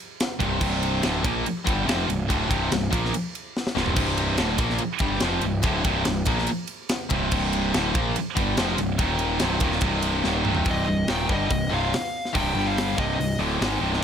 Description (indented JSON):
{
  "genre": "heavy metal",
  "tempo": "143 BPM",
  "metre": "4/4",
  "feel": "straight",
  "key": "C minor",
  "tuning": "A4 = 440 Hz",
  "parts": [
    { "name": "tight metal drum kit", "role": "drums", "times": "0.2-14.0 s", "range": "crash cymbal, hi-hat, kick drum, ride cymbal, snare drum, toms", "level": "-27 LUFS", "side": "equal", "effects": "none" },
    { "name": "high-gain distorted guitar", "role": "riff", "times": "0.4-14.0 s", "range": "C2 to Bb3", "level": "-27 LUFS", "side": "right 12 dB", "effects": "distortion" },
    { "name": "tight distorted guitar", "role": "riff", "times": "0.4-14.0 s", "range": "C2 to Bb3", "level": "-28 LUFS", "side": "left 12 dB", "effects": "distortion" },
    { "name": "fuzz picked electric bass", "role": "bass", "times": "0.4-14.0 s", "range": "C1 to Bb1", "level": "-28 LUFS", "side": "equal", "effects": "overdrive" },
    { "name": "high-gain lead guitar", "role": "melody", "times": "10.7-13.4 s", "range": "Eb5 to G5", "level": "-30 LUFS", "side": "left 2 dB", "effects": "distortion, ping-pong delay" }
  ],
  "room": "small room ambience",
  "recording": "none",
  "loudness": "-22 LUFS",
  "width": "side -8 dB against mid",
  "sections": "0.0-10.7 A section; 10.7-14.0 B section",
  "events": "drum fill 3.5-4.0, 10.2-10.7",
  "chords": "0.0 C5; 9.0 Eb5; 9.4 Cm; 12.6 G5; 13.0 Cm",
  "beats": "0.20 | 0.62 1.03 1.45 1.87 | 2.29 2.71 3.13 3.55 | 3.97 4.39 4.80 5.22 | 5.64 6.06 6.48 6.90 | 7.32 7.74 8.16 8.57 | 8.99 9.41 9.83 10.25 | 10.67 11.09 11.51 11.92 | 12.34 12.76 13.18 13.60 | 14.02"
}